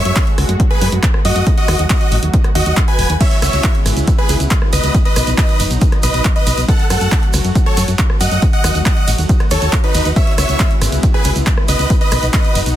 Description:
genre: uplifting trance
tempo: 138 BPM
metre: 4/4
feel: straight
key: C# minor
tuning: A4 = 440 Hz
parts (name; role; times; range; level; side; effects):
- big supersaw lead; melody; 0.0-12.6 s; D#4 to G#5; -20 LUFS; equal; sidechain pumping, tape echo
- plucky unison lead; second line; 0.0-12.6 s; B4 to G#5; -27 LUFS; equal; sidechain pumping, tape echo
- lush unison pad; sustained chords; 0.0-12.8 s; C#3 to F#4; -25 LUFS; equal; chorus, sidechain pumping
- solid FM bass; bass; 0.1-12.7 s; D#1 to F#2; -16 LUFS; equal; sidechain pumping
- punchy analog drum machine; drums; 0.1-12.7 s; crash cymbal, handclaps, hi-hat, ride cymbal, rim click; -22 LUFS; right 1 dB; sidechain pumping on hats, sidechain pumping on cymbals
- electronic kick drum; drums; 0.2-12.4 s; none; -14 LUFS; equal; none
- tube shaker; percussion; 3.2-12.8 s; none; -26 LUFS; right 6 dB; none
room: digital ambience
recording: dense, heavily limited modern master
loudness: -12 LUFS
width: side -12 dB against mid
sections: 0.0-12.8 A section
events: none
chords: 0.0 F#madd9; 1.5 D#dim; 3.2 C#m7; 4.9 B; 6.7 F#m; 8.4 D#dim; 10.2 C#m7; 11.9 B

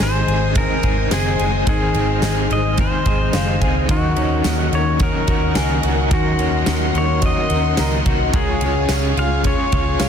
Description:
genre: dream pop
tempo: 108 BPM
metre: 4/4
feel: straight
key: unclear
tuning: A4 = 440 Hz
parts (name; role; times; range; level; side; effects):
- pedal steel guitar; melody; 0.0-10.1 s; Gb4 to F5; -24 LUFS; left 1 dB; digital delay
- overdriven semi-hollow guitar; accompaniment; 0.0-10.1 s; Ab2 to Bb4; -25 LUFS; right 3 dB; tremolo, analog chorus
- string machine, violas; sustained chords; 0.0-10.1 s; Ab4 to F6; -25 LUFS; equal; ensemble chorus
- clean electric guitar; arpeggios; 0.0-10.1 s; Eb3 to Ab4; -23 LUFS; left 7 dB; wide subtle chorus, digital delay
- vintage muted fingered electric bass; bass; 0.0-10.1 s; Gb1 to Eb2; -21 LUFS; equal; none
- huge arena drum kit; drums; 0.0-10.1 s; kick drum, ride cymbal, snare drum, tambourine; -21 LUFS; equal; none
- celesta; texture; 3.3-10.1 s; F5 to Bb5; -34 LUFS; right 4 dB; digital delay
room: light reverb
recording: dense, heavily limited modern master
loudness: -15 LUFS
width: side -8 dB against mid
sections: 0.0-10.1 A section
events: none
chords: 0.0 Ab; 3.9 Ebm7; 8.3 Db

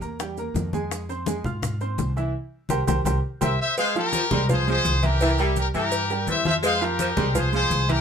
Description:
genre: latin, salsa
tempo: 168 BPM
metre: 4/4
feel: straight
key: F harmonic minor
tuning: A4 = 440 Hz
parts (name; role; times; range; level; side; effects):
- bright baby grand piano; accompaniment; 0.0-8.0 s; E3 to F6; -28 LUFS; right 4 dB; none
- upright bass; bass; 0.0-8.0 s; C2 to Ab2; -26 LUFS; equal; none
- congas; percussion; 0.0-8.0 s; none; -30 LUFS; left 2 dB; none
- maracas; percussion; 0.0-8.0 s; none; -38 LUFS; right 8 dB; none
- bongos and cowbell; percussion; 0.2-8.0 s; none; -31 LUFS; left 4 dB; none
- brilliant trumpet section; melody; 3.4-8.0 s; E4 to F5; -24 LUFS; left 2 dB; none
- warm saxophone section; second line; 3.8-7.8 s; E3 to Ab3; -28 LUFS; left 2 dB; none
room: light reverb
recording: minimal, uncompressed stereo recording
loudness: -21 LUFS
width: side -7 dB against mid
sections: 0.0-3.8 A section; 3.8-8.0 B section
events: band accent 2.3-3.8; drum fill 3.2-3.8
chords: 0.0 C7 (rootless); 0.9 Fm; 2.3 C5; 3.8 Fm; 5.2 C7; 6.6 Fm

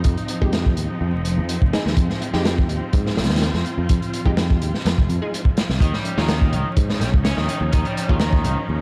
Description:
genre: breakbeat, breaks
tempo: 125 BPM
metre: 4/4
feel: straight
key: F minor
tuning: A4 = 437 Hz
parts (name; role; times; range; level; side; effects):
- rich studio string section; sustained chords; 0.0-8.8 s; F3 to F4; -30 LUFS; equal; sidechain pumping
- orchestra-hit-like synth stab; stabs; 0.0-8.1 s; Ab3 to Ab4; -32 LUFS; equal; built-in reverb, tape echo
- picked electric bass; bass; 0.0-8.8 s; F1 to Ab2; -25 LUFS; equal; tube saturation
- crunchy breakbeat drum kit; drums; 0.0-8.6 s; hi-hat, kick drum, snare drum; -23 LUFS; equal; none
- raw garage guitar; riff; 5.8-8.6 s; Eb3 to Db4; -29 LUFS; equal; overdrive, tape echo
room: light reverb, small room reverb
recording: dark, warm production, vinyl crackle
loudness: -20 LUFS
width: mono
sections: 0.0-8.8 A section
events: none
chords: 0.0 Fm7; 5.8 Eb9sus4

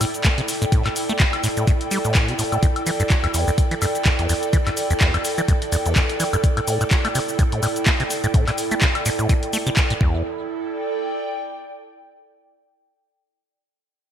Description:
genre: acid house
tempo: 126 BPM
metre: 4/4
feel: swing 56% on 16ths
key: E minor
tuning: A4 = 440 Hz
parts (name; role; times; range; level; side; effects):
- acid bass, saw; riff; 0.0-10.2 s; E2 to A3; -24 LUFS; equal; sidechain pumping, digital delay
- punchy analog drum machine; drums; 0.0-10.0 s; handclaps, hi-hat, shaker, woodblock; -24 LUFS; left 1 dB; gated reverb
- airy breathy pad; texture; 0.0-12.1 s; E4 to G5; -25 LUFS; right 2 dB; chorus, sidechain pumping
- electronic kick drum; drums; 0.2-10.1 s; none; -18 LUFS; equal; overdrive
room: moderate lush hall reverb, RT60 1.6 s, digital ambience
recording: bright 1980s-style digital production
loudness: -18 LUFS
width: side -9 dB against mid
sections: 0.0-10.2 A section; 10.2-12.2 B section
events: none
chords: 0.0 A7(no3); 2.6 Em7; 6.4 A7(no3); 10.0 Esus4; 10.2 Em7

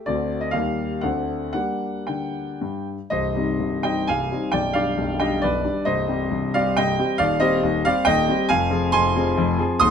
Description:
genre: classical, romantic triple-time dance for piano with dotted rhythms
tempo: 105-146 BPM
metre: 3/4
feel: rubato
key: G minor, C minor from 3.1 s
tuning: A4 = 440 Hz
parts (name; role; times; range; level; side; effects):
- clear concert grand piano; solo; 0.0-9.9 s; B0 to Eb6; -20 LUFS; equal; none
room: light reverb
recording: close, detailed microphones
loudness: -20 LUFS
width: side -7 dB against mid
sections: 0.0-3.1 A section; 3.1-9.9 B section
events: none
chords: 0.1 D7; 0.5 Eb; 1.0 D7; 1.5 Gm; 3.1 Cm; 4.5 G/B; 5.9 Cm; 7.2 Cm/Eb; 8.5 Fm

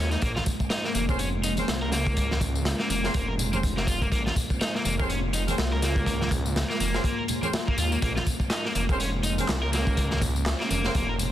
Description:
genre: breakbeat, breaks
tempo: 123 BPM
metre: 4/4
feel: swing 58% on 16ths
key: Bb minor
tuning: A4 = 440 Hz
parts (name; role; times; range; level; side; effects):
- warbly tape-like pad; sustained chords; 0.0-11.3 s; Ab3 to C5; -33 LUFS; left 1 dB; chorus, built-in reverb, sidechain pumping
- overdriven semi-hollow guitar; riff; 0.0-11.1 s; Bb3 to Bb4; -31 LUFS; equal; vintage 12-bit sampler grit, digital delay
- detuned saw bass; bass; 0.0-11.3 s; F1 to Eb2; -28 LUFS; equal; none
- crunchy breakbeat drum kit; drums; 0.1-11.3 s; hi-hat, kick drum, snare drum; -28 LUFS; equal; none
- electronic tambourine and handclaps; drums; 0.1-11.3 s; none; -36 LUFS; left 3 dB; none
- congas; percussion; 0.4-11.3 s; none; -36 LUFS; right 2 dB; none
- brilliant horn section; stabs; 1.1-10.9 s; C4 to C5; -35 LUFS; right 1 dB; digital delay
room: light reverb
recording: dense, heavily limited modern master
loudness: -23 LUFS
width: side -12 dB against mid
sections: 0.0-11.3 A section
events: none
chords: 0.0 Bbm9

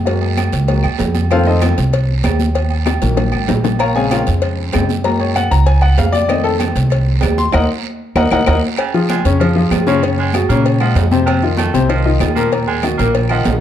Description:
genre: latin, salsa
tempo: 193 BPM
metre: 4/4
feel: straight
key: unclear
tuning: A4 = 440 Hz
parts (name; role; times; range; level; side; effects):
- upright bass; bass; 0.0-13.6 s; Ab1 to Bb2; -16 LUFS; right 1 dB; none
- clear concert grand piano; accompaniment; 0.1-13.6 s; Bb2 to C6; -17 LUFS; left 4 dB; none
- agogo bells and timbales; percussion; 0.1-13.6 s; none; -23 LUFS; right 8 dB; none
- congas; percussion; 0.1-13.6 s; none; -24 LUFS; equal; none
- cowbell and bongos; percussion; 0.1-13.6 s; none; -24 LUFS; left 6 dB; none
- guiro; percussion; 0.1-13.6 s; none; -31 LUFS; right 11 dB; none
- claves; percussion; 0.4-13.5 s; none; -30 LUFS; left 7 dB; none
- raspy baritone saxophone; second line; 8.8-13.6 s; C3 to Bb3; -23 LUFS; right 7 dB; none
room: light reverb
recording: dark, warm production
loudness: -12 LUFS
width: side -10 dB against mid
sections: 0.0-8.8 A section; 8.8-13.6 B section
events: grand piano solo 0.0-8.8; drum fill 2.9-3.8, 7.5-8.8; band accent 7.5-8.8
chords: 0.1 Gbadd9; 1.3 F7; 2.6 Ebm; 3.8 Bbm7; 5.0 Gbadd9; 6.3 F7; 7.5 Ebm; 8.8 Dbadd11; 10.0 Gbadd9; 11.3 F7(no3); 12.5 Ebm

